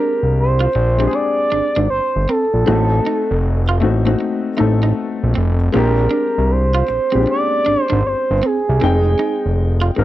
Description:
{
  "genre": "R&B, neo-soul",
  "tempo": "78 BPM",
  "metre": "4/4",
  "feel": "swing 64% on 16ths",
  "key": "unclear",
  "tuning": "A4 = 440 Hz",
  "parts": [
    { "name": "expressive synth lead", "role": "melody", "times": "0.0-10.0 s", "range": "Ab4 to D5", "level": "-18 LUFS", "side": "right 1 dB", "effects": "chorus, slapback echo" },
    { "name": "electric guitar at the edge of break-up", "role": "second line", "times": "0.0-10.0 s", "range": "A3 to F4", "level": "-22 LUFS", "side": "right 5 dB", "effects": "none" },
    { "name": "warm upright piano", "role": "accompaniment", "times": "0.0-10.0 s", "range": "Ab3 to G5", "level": "-22 LUFS", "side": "left 5 dB", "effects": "none" },
    { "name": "fat analog bass", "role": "bass", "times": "0.2-10.0 s", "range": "F1 to C2", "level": "-16 LUFS", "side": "equal", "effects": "none" }
  ],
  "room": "little or no reverb",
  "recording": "dry, close 1970s-style studio recording",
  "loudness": "-14 LUFS",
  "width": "side -14 dB against mid",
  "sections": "0.0-10.0 A section",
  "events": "none",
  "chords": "0.0 Bb13; 2.7 F7b9; 5.7 Bb13; 8.8 Fm9"
}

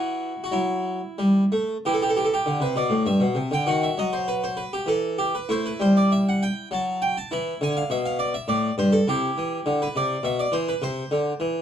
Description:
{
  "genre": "classical, baroque-style suite movement for harpsichord",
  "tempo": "100 BPM",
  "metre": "3/4",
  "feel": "uneven beats, rubato",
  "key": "E minor",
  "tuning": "A4 = 441 Hz",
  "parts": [
    { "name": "harpsichord", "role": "solo", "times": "0.0-11.6 s", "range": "G2 to B5", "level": "-21 LUFS", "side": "equal", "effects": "none" }
  ],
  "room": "light reverb",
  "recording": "dark, warm production",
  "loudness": "-21 LUFS",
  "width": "side -9 dB against mid",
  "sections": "0.0-1.8 A section; 1.8-11.6 B section",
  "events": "none",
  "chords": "0.0 Em; 3.7 D#m6; 4.9 N.C.; 5.5 A5; 7.3 E5; 8.5 Gsus24; 9.1 C; 10.2 E5/B; 10.8 Cadd9"
}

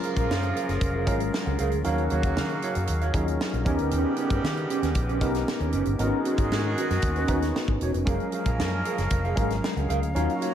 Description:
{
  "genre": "polished 1980s jazz-funk pop",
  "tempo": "116 BPM",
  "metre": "4/4",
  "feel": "straight",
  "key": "unclear",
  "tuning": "A4 = 440 Hz",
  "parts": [
    { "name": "mellow horn section", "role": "second line", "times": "0.0-10.5 s", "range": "Db3 to Db5", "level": "-33 LUFS", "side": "right 3 dB", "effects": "tape echo" },
    { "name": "tine electric piano", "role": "accompaniment", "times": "0.0-10.5 s", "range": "Gb3 to F5", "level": "-30 LUFS", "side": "left 3 dB", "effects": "overdrive, medium stereo tremolo, lush chorus" },
    { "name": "clear woodwind section", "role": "sustained chords", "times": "0.0-10.5 s", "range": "Eb3 to F5", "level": "-36 LUFS", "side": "left 2 dB", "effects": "none" },
    { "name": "mellow electric guitar", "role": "riff", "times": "0.0-10.5 s", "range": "Db4 to Gb5", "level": "-31 LUFS", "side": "right 6 dB", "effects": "lush chorus" },
    { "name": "tight funk drum kit", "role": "drums", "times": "0.0-10.5 s", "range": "hi-hat, kick drum, snare drum", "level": "-29 LUFS", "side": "equal", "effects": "gated reverb" },
    { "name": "vintage muted fingered electric bass", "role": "bass", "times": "0.2-10.3 s", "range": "Fb1 to Eb3", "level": "-28 LUFS", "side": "equal", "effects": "none" }
  ],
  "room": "small room ambience",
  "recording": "none",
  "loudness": "-23 LUFS",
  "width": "side -10 dB against mid",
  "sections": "0.0-10.5 A section",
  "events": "none",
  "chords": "0.0 Gbmaj9; 1.8 Ebm9; 3.7 Eb7b13; 6.0 Abm11; 8.1 Gbmaj9"
}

